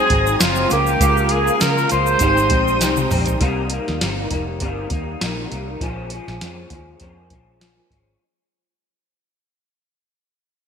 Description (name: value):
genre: indie pop, bedroom pop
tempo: 100 BPM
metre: 4/4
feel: swing 55% on 16ths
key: Bb dorian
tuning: A4 = 441 Hz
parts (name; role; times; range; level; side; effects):
- breathy trumpet; melody; 0.0-3.1 s; F4 to C5; -19 LUFS; equal; analog chorus, ping-pong delay
- electric guitar through a small old amp; accompaniment; 0.0-8.2 s; Ab2 to F4; -24 LUFS; left 2 dB; ensemble chorus, warbly pitch drift
- reed electric piano; accompaniment; 0.0-3.4 s; Gb3 to C5; -26 LUFS; right 5 dB; cassette tape
- ensemble organ-string; sustained chords; 0.0-3.4 s; Bb4 to Eb6; -25 LUFS; equal; ensemble chorus
- vintage muted fingered electric bass; bass; 0.1-8.1 s; F1 to Db3; -24 LUFS; equal; none
- soft vintage rhythm box; drums; 0.1-8.1 s; hi-hat, kick drum, snare drum, toms; -22 LUFS; equal; overdrive, gated reverb
- egg shaker; percussion; 0.3-3.4 s; none; -31 LUFS; right 12 dB; none
room: light reverb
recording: bright 1980s-style digital production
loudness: -16 LUFS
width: side -7 dB against mid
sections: 0.0-3.4 A section; 3.4-8.2 B section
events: drum fill 2.8-3.4; fade-out 3.4-8.2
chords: 0.0 Ab7; 0.7 Db6; 2.2 Abmaj7; 3.4 Cm7; 5.8 Bbm7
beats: 0.40 | 1.00 1.60 2.20 2.80 | 3.40 4.00 4.60 5.20 | 5.80 6.40 7.00 7.60